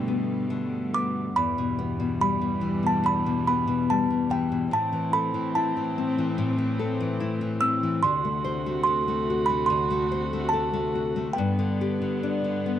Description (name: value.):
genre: children's music, lullaby.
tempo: 72 BPM.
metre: 4/4.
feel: rubato.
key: unclear.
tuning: A4 = 441 Hz.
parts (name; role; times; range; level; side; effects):
music box; melody; 0.0-12.8 s; G5 to E6; -26 LUFS; right 3 dB; none.
nylon-string guitar; accompaniment; 0.0-12.8 s; E2 to C5; -27 LUFS; left 5 dB; none.
rich chamber string section; sustained chords; 0.0-12.8 s; D2 to F#4; -30 LUFS; right 3 dB; none.
room: little or no reverb.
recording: dry, close 1970s-style studio recording.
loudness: -23 LUFS.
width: side -10 dB against mid.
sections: 0.0-1.4 A section; 1.4-12.8 B section.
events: none.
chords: 0.0 Gadd9; 1.4 Em; 4.7 Am; 8.0 D7; 11.4 G.